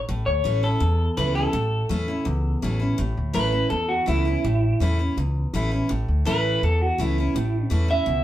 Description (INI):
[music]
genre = rockabilly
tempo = 165 BPM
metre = 4/4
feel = straight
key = A major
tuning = A4 = 441 Hz
[part]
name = picked steel-string acoustic guitar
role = accompaniment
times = 0.0-8.2 s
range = E2 to E4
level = -27 LUFS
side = left 1 dB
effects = none
[part]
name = upright bass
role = bass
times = 0.1-8.2 s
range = A1 to E2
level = -23 LUFS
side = equal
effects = none
[part]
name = electric guitar through a small old amp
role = melody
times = 0.3-8.2 s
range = E4 to E5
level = -25 LUFS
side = right 1 dB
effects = harmonic tremolo
[sound]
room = moderate studio reverb, RT60 0.6 s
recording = band playing live in one room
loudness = -20 LUFS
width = side -13 dB against mid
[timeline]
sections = 0.0-3.0 A section; 3.0-8.2 B section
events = clean electric guitar solo 3.0-8.2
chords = 0.1 A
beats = | 0.09 0.45 0.81 1.17 | 1.53 1.90 2.26 2.62 | 2.98 3.35 3.71 4.08 | 4.44 4.80 5.17 5.53 | 5.89 6.26 6.62 6.99 | 7.35 7.71 8.08